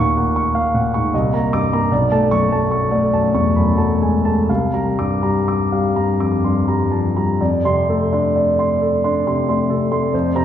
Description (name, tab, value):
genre	classical, impressionist solo piano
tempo	61-78 BPM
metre	3/4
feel	rubato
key	F lydian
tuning	A4 = 440 Hz
part	warm concert grand piano	solo	0.0-10.4 s	B1 to D6	-15 LUFS	equal	none
room	wet scoring stage reverb, RT60 1.7 s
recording	heard from further back in the room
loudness	-15 LUFS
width	side -10 dB against mid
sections	0.0-7.4 A section; 7.4-10.4 B section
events	none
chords	0.0 Ebm9; 1.1 Cm9; 1.9 Bm9; 4.5 C9sus4; 7.4 F6